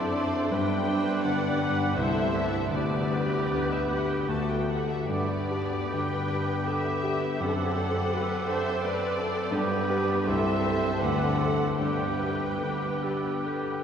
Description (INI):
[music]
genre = classical, romantic movement for piano and orchestra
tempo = 69-86 BPM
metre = 3/4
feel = rubato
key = G major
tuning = A4 = 438 Hz
[part]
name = warm grand piano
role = melody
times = 0.0-13.8 s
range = C2 to C5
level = -28 LUFS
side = left 1 dB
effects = none
[part]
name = warm studio violin section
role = melody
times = 0.0-13.8 s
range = B4 to A5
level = -35 LUFS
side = left 2 dB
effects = none
[part]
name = mellow hollow silver concert flute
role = second line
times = 0.0-13.8 s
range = C6 to D6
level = -37 LUFS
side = right 2 dB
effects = none
[part]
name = mellow oboe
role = second line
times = 0.0-13.8 s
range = F#4 to C5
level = -38 LUFS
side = right 2 dB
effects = none
[part]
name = rich studio violin section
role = second line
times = 0.0-13.8 s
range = G3 to C5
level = -37 LUFS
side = left 1 dB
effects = none
[part]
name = clear bassoon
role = accompaniment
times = 0.0-13.8 s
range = G3 to C4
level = -37 LUFS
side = equal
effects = none
[part]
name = rich studio viola section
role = accompaniment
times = 0.0-13.8 s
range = G4 to D5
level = -36 LUFS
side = right 1 dB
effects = none
[part]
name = mellow French horn section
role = sustained chords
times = 0.0-12.1 s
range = G3 to G4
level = -36 LUFS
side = left 1 dB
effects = none
[part]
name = rich studio cello section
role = bass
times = 0.0-12.5 s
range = C2 to D3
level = -35 LUFS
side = right 1 dB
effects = none
[sound]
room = wet cathedral reverb, RT60 6.9 s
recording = recorded in a church or concert hall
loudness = -25 LUFS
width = side -8 dB against mid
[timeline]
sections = 0.0-13.8 A section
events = none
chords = 0.0 D7/F#; 0.5 G; 2.0 Am/C; 2.7 G/D; 4.3 D; 5.1 G; 7.4 D7/F#; 9.5 G; 10.3 Am/C; 11.0 D7; 11.8 G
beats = | 0.53 1.24 1.97 | 2.73 3.50 4.28 | 5.09 5.92 6.67 | 7.41 8.12 8.83 | 9.53 10.28 11.02 | 11.81 12.64 13.45